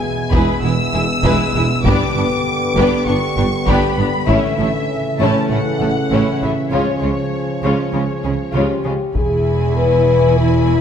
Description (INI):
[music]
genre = cinematic, epic orchestral film score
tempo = 99 BPM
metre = 4/4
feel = straight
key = E mixolydian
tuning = A4 = 440 Hz
[part]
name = rich symphonic violin section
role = melody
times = 0.0-10.8 s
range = C#5 to E6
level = -24 LUFS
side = left 2 dB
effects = none
[part]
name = dark French horn section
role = sustained chords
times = 0.0-10.8 s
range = B3 to B4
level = -21 LUFS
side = left 5 dB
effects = none
[part]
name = warm trombone section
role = sustained chords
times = 0.0-10.8 s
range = B2 to E4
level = -24 LUFS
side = right 4 dB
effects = none
[part]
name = warm symphonic violin section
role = second line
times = 0.3-10.8 s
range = G#3 to G#5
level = -24 LUFS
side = left 4 dB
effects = none
[part]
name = warm symphonic viola section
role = accompaniment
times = 0.3-10.8 s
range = G#3 to E4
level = -24 LUFS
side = right 1 dB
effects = none
[part]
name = dark tuba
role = bass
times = 0.3-9.0 s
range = E1 to C#2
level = -24 LUFS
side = right 3 dB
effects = none
[part]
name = rich studio double bass section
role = bass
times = 0.3-10.8 s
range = E1 to C#2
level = -22 LUFS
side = right 3 dB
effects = none
[part]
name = rich symphonic cello section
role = bass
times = 0.3-10.8 s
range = E2 to C#3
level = -23 LUFS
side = right 2 dB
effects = none
[part]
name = taiko ensemble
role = drums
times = 0.3-5.5, 9.2-10.3 s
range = none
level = -22 LUFS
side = left 1 dB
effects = none
[sound]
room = moderate concert hall reverb, RT60 2.1 s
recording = none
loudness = -14 LUFS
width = side -8 dB against mid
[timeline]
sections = 0.0-9.1 A section; 9.1-10.8 B section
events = none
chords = 0.0 E; 1.8 G; 4.3 A; 6.7 C#; 9.1 E